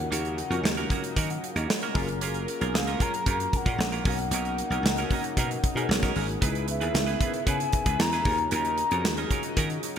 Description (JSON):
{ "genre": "polished 1980s jazz-funk pop", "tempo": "114 BPM", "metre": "4/4", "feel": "straight", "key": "unclear", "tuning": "A4 = 442 Hz", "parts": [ { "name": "mellow hollow alto ocarina", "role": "melody", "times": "0.0-9.0 s", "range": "E5 to A#5", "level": "-31 LUFS", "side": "left 2 dB", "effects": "ping-pong delay" }, { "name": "tine electric piano", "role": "accompaniment", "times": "0.0-10.0 s", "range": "C#4 to F#5", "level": "-34 LUFS", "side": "left 4 dB", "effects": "fast stereo tremolo, ensemble chorus" }, { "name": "lush unison pad", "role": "sustained chords", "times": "0.0-10.0 s", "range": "C#3 to A#4", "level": "-38 LUFS", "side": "equal", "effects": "chorus" }, { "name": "dry thumbed slap bass", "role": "bass", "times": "0.0-9.8 s", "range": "F#1 to D#3", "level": "-30 LUFS", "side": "equal", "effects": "none" }, { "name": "clean electric guitar", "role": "riff", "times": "0.1-9.9 s", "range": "F#3 to B4", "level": "-34 LUFS", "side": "right 7 dB", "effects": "lush chorus" }, { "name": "modern studio drum kit", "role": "drums", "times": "0.1-10.0 s", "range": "hi-hat, kick drum, snare drum", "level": "-28 LUFS", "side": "right 1 dB", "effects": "gated reverb" } ], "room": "light reverb, small room ambience", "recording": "bright 1980s-style digital production", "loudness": "-24 LUFS", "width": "side -8 dB against mid", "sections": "0.0-10.0 A section", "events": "none", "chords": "0.0 D#m7; 2.0 F#maj7; 4.1 Bmaj9; 6.4 C#m7; 8.3 D#m7" }